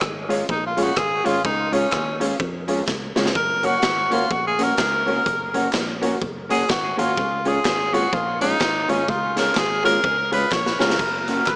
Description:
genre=ska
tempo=126 BPM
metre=4/4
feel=swing 60% on 8ths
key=F# major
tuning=A4 = 440 Hz
part: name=fingered electric bass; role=bass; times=0.0-11.6 s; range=F#1 to E#2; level=-33 LUFS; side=equal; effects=none
part: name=raw garage drum kit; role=drums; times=0.0-11.6 s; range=crash cymbal, hi-hat, kick drum, rim click, snare drum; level=-25 LUFS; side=equal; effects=none
part: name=group handclap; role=percussion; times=0.0-11.6 s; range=none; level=barely audible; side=none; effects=none
part: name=mellow electric guitar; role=accompaniment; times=0.3-11.4 s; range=G#3 to F#4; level=-27 LUFS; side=equal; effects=lush chorus
part: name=warm upright piano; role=stabs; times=0.3-10.9 s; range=C#4 to C#5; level=-26 LUFS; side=equal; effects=none
part: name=breathy tenor saxophone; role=melody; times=0.5-10.8 s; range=C#4 to C#5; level=-21 LUFS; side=equal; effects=dub echo
part: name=melodica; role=melody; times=10.8-11.6 s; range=A#4 to B4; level=-22 LUFS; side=equal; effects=dub echo
room=moderate studio reverb, RT60 0.6 s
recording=small speaker sound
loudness=-18 LUFS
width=side -30 dB against mid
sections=0.0-11.0 A section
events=tenor saxophone solo 0.0-11.0; drum fill 2.9-3.4, 10.5-11.0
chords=0.0 C#; 3.4 F#; 7.2 C#; 11.0 F#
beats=0.01 0.49 0.97 | 1.45 1.92 2.40 2.88 | 3.36 3.83 4.31 4.79 | 5.26 5.74 6.22 6.70 | 7.17 7.65 8.13 8.61 | 9.08 9.56 10.04 10.52 | 10.99 11.47

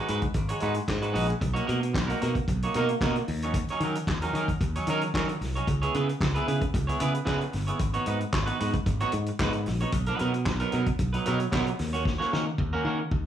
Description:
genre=disco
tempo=113 BPM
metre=4/4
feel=straight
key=unclear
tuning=A4 = 440 Hz
part: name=semi-hollow electric guitar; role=accompaniment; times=0.0-13.2 s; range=F#3 to C#5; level=-29 LUFS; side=right 3 dB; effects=lush chorus
part: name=modern bright fingered electric bass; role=bass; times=0.1-13.3 s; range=G1 to D#3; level=-28 LUFS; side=equal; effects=none
part: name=warm soul drum kit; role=drums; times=0.1-13.2 s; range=handclaps, hi-hat, kick drum, snare drum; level=-31 LUFS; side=equal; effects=none
room=light reverb, studio reverb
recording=tape saturation, studio ambience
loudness=-25 LUFS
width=side -10 dB against mid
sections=0.0-13.3 A section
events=drum fill 12.1-13.3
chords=0.0 G#m7; 1.4 Bmaj7; 3.3 D#m7; 5.7 C#m7; 7.8 G#m7; 9.9 Bmaj7; 11.8 D#m7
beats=0.35 0.88 | 1.41 1.94 2.48 3.01 | 3.54 4.07 4.61 5.14 | 5.67 6.20 6.73 7.27 | 7.80 8.33 8.86 9.39 | 9.93 10.46 10.99 11.52 | 12.06 12.59 13.12

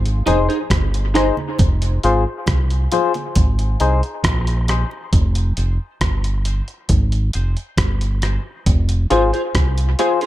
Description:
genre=dub reggae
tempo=68 BPM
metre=4/4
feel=straight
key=F minor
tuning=A4 = 440 Hz
part: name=deep dub fingered electric bass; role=bass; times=0.0-9.9 s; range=F1 to C2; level=-18 LUFS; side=equal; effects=none
part: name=dusty soul sampler-style drum kit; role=drums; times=0.1-10.3 s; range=hi-hat, kick drum, rim click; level=-19 LUFS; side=equal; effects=none
part: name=electric guitar through a small old amp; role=accompaniment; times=0.3-1.3, 9.1-10.3 s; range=Eb4 to C5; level=-22 LUFS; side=right 1 dB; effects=analog chorus, dub echo
part: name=percussive organ stab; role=stabs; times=0.3-10.2 s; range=Eb4 to C5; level=-21 LUFS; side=left 4 dB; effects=chorus, high-pass filter, dub echo
part: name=congas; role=percussion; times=0.3-5.1 s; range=none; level=-30 LUFS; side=right 5 dB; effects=high-pass filter on perc, dub echo
room=light reverb, digital ambience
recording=none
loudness=-16 LUFS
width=side -14 dB against mid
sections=0.0-10.3 A section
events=filter sweep 1.6-8.7; part muted 5.1-10.3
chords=0.0 Ab; 1.6 Fm; 3.4 Ab; 5.1 Fm; 6.9 Ab; 8.7 Fm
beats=0.71 | 1.59 2.48 3.36 4.25 | 5.13 6.01 6.90 7.78 | 8.66 9.55

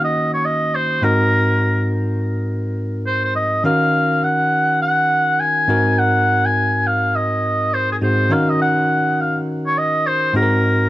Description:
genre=R&B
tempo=103 BPM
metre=4/4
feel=swing 60% on 16ths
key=Eb dorian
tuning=A4 = 441 Hz
part: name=warm oboe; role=melody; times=0.0-10.9 s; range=Ab4 to Ab5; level=-17 LUFS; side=equal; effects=cassette tape, plate reverb
part: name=bell-like tine electric piano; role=accompaniment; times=0.0-10.9 s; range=Ab2 to Bb4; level=-19 LUFS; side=equal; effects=cassette tape
room=moderate studio reverb, RT60 0.6 s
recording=home recording on cassette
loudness=-15 LUFS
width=side -15 dB against mid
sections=0.0-10.9 A section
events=none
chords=0.0 Ebm7; 1.0 Ab9; 3.6 Ebm9; 5.7 Ab9; 8.3 Ebm7; 10.3 Ab9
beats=0.15 0.73 | 1.32 1.90 2.48 3.06 | 3.65 4.23 4.81 5.39 | 5.98 6.56 7.14 7.72 | 8.31 8.89 9.47 10.05 | 10.64

